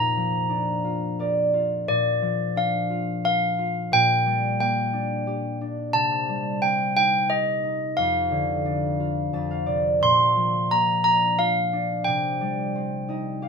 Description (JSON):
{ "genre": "children's music", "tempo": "88 BPM", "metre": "3/4", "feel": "straight", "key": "Bb major", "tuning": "A4 = 442 Hz", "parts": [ { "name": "handbells", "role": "melody", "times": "0.0-13.5 s", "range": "D5 to C6", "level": "-22 LUFS", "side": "right 1 dB", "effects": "none" }, { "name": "concert harp", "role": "accompaniment", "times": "0.0-13.5 s", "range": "F2 to A5", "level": "-26 LUFS", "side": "left 1 dB", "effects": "none" } ], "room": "light reverb", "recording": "minimal, uncompressed stereo recording", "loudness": "-21 LUFS", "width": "side -5 dB against mid", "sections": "0.0-1.9 A section; 1.9-13.5 A section", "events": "harp fill 0.9-1.9, 9.0-10.0, 12.7-13.5", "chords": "0.0 Bb; 3.9 Gm/Bb; 5.9 Cm; 8.0 Dm/F; 9.3 F5; 10.0 Bb; 12.1 Cm", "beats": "0.51 1.20 | 1.89 2.57 3.25 | 3.92 4.60 5.27 | 5.94 6.61 7.29 | 7.96 8.64 9.33 | 10.01 10.70 11.38 | 12.06 12.74 13.41" }